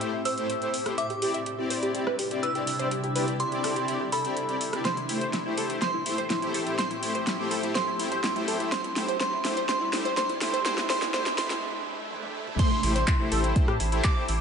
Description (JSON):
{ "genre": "progressive house", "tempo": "124 BPM", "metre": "4/4", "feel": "straight", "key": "A minor", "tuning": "A4 = 440 Hz", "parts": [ { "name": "glassy synth bell", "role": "melody", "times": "0.0-14.4 s", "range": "B5 to E6", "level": "-32 LUFS", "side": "right 3 dB", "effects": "chorus, tape echo" }, { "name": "shimmering ambient pad", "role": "sustained chords", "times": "0.0-14.4 s", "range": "A2 to G4", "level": "-36 LUFS", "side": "equal", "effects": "chorus, built-in reverb, sidechain pumping" }, { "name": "tight sequenced synth", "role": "arpeggios", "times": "0.0-14.4 s", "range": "E4 to E5", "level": "-32 LUFS", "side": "equal", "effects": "chorus, phaser, sidechain pumping, tape echo" }, { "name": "soft supersaw", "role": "stabs", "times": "0.0-14.2 s", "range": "A3 to D5", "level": "-32 LUFS", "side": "left 3 dB", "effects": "sidechain pumping, tape echo" }, { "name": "deep house drum kit", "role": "drums", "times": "0.0-14.4 s", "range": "crash cymbal, handclaps, hi-hat, rim click, snare drum, toms", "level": "-32 LUFS", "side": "equal", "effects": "none" }, { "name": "riser", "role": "sound effects", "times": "0.4-12.6 s", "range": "none", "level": "-40 LUFS", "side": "right 1 dB", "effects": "none" }, { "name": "glassy wavetable pluck", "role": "second line", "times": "12.6-14.4 s", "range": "C6 to D6", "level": "-38 LUFS", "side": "right 2 dB", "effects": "chorus, sidechain pumping, tape echo" }, { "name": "electronic kick drum", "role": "drums", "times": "12.6-14.1 s", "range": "none", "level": "-24 LUFS", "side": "equal", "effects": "none" }, { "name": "drifting glass-harmonics texture", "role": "texture", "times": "13.0-14.4 s", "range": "C5 to A5", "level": "-39 LUFS", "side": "right 1 dB", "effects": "chorus, built-in reverb, sidechain pumping" }, { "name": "round analog bass", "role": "bass", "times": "12.8-14.4 s", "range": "A1 to A2", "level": "-27 LUFS", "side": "equal", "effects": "sidechain pumping" } ], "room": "moderate concert hall reverb, RT60 2.1 s", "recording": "high-pass filter, nothing above 10.6 kHz", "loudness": "-25 LUFS", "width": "side -6 dB against mid", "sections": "0.0-12.6 A section; 12.6-14.4 B section", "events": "build-up 0.0-12.6; riser 0.4-12.6; drum fill 4.9-11.6, 12.1-12.6; break 11.6-12.6; drop 12.6-14.4", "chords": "0.0 Am7; 1.0 Cadd9; 4.9 Am7; 8.7 Cadd9; 12.6 Am7" }